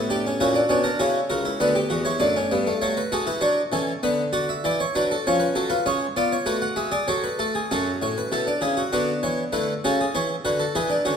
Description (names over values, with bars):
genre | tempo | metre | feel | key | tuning
classical, baroque-style 4-part fugue for harpsichord | 98 BPM | 4/4 | straight | unclear | A4 = 440 Hz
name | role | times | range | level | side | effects
harpsichord | solo | 0.0-11.2 s | C#2 to F#5 | -21 LUFS | equal | none
room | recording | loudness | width
wet recital hall reverb, RT60 1.3 s | none | -21 LUFS | side -7 dB against mid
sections
0.0-7.7 A section; 7.7-11.2 B section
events
none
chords
0.4 F#7/A#; 1.6 Bm/D; 2.8 F#m; 4.0 Bm/D; 5.2 C#7/E#; 6.5 F#m; 8.9 Bm7/D; 10.1 E